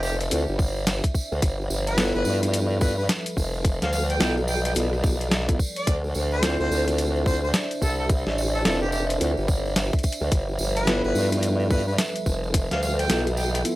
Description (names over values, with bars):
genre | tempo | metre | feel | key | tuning
glitch hop | 108 BPM | 4/4 | swing 62% on 16ths | unclear | A4 = 439 Hz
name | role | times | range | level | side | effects
warm harmonica | melody | 0.0-13.6 s | G4 to G5 | -31 LUFS | left 1 dB | vintage 12-bit sampler grit, tape echo
dark analog pad | sustained chords | 0.0-13.8 s | F3 to E5 | -32 LUFS | right 1 dB | chorus, vintage 12-bit sampler grit, sidechain pumping
formant-sweep wobble bass | bass | 0.0-13.6 s | F1 to G2 | -25 LUFS | equal | chorus, overdrive
tambourine | percussion | 0.0-13.8 s | none | -35 LUFS | right 2 dB | none
boom bap sampler-style drum kit | drums | 0.2-13.8 s | hi-hat, rim click, snare drum | -25 LUFS | equal | none
bell-like tine electric piano | stabs | 0.3-13.8 s | B3 to A4 | -29 LUFS | equal | sidechain pumping, low-pass filter, tape echo
electronic kick drum | drums | 0.6-12.7 s | none | -22 LUFS | equal | none
room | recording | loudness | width
little or no reverb | dry, gritty hardware recording, transformer saturation | -21 LUFS | side -17 dB against mid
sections
0.0-13.8 A section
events
none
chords
0.0 Dm9; 1.4 G13; 5.9 Dm9; 10.3 G13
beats
0.32 0.87 | 1.43 1.98 2.54 3.09 | 3.65 4.21 4.76 5.32 | 5.87 6.43 6.98 7.54 | 8.09 8.65 9.21 9.76 | 10.32 10.87 11.43 11.98 | 12.54 13.09 13.65